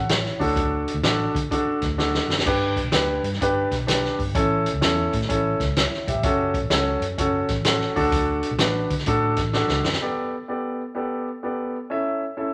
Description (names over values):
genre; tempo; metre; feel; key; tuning
uptempo 1960s-style soul; 127 BPM; 4/4; swing 65% on 8ths; D major; A4 = 442 Hz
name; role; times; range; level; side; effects
warm grand piano; accompaniment; 0.0-12.5 s; B3 to E5; -26 LUFS; equal; none
vintage muted fingered electric bass; bass; 0.0-10.0 s; F#1 to D3; -30 LUFS; equal; none
vintage drum kit; drums; 0.1-10.0 s; crash cymbal, hi-hat, kick drum, snare drum; -27 LUFS; equal; none
room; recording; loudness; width
moderate large studio reverb, RT60 1.1 s; none; -23 LUFS; mono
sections
0.0-10.0 A section; 10.0-12.5 B section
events
drum fill 2.0-2.5, 9.5-10.0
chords
0.3 D; 2.5 G; 4.3 A; 6.2 F#m; 7.9 D; 10.0 Gadd9; 11.9 A